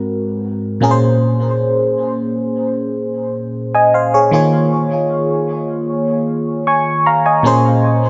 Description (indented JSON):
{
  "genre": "R&B",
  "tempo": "77 BPM",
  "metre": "4/4",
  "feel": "straight",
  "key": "Bb minor",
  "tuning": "A4 = 440 Hz",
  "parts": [
    { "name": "FM electric piano", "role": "solo", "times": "0.0-8.1 s", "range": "Ab2 to Db6", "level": "-16 LUFS", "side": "equal", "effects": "chorus, phaser, diffuse ambient delay" }
  ],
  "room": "wet plate reverb, RT60 3.1 s",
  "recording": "dreamy mix soaked in reverb, nothing above 7.9 kHz",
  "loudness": "-16 LUFS",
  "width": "mono",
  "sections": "0.0-7.4 A section",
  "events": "none",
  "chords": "0.0 Ab7; 0.8 Bbm7; 4.3 Eb7sus4; 7.4 Bbm7"
}